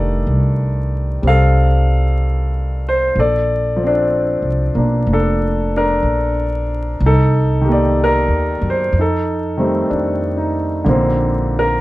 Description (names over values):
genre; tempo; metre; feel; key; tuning
jazz ballad; 62 BPM; 4/4; swing 68% on 8ths; Bb major; A4 = 442 Hz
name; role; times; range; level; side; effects
warm concert grand piano; accompaniment; 0.0-11.8 s; D3 to F5; -17 LUFS; equal; none
upright bass; bass; 0.0-11.8 s; F1 to Gb2; -17 LUFS; equal; none
room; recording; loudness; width
light reverb; vinyl crackle; -14 LUFS; side -18 dB against mid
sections
0.0-10.9 A section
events
none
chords
0.0 F13; 3.2 Bbmaj9; 7.0 Cm7; 8.9 F7; 10.9 Bbadd9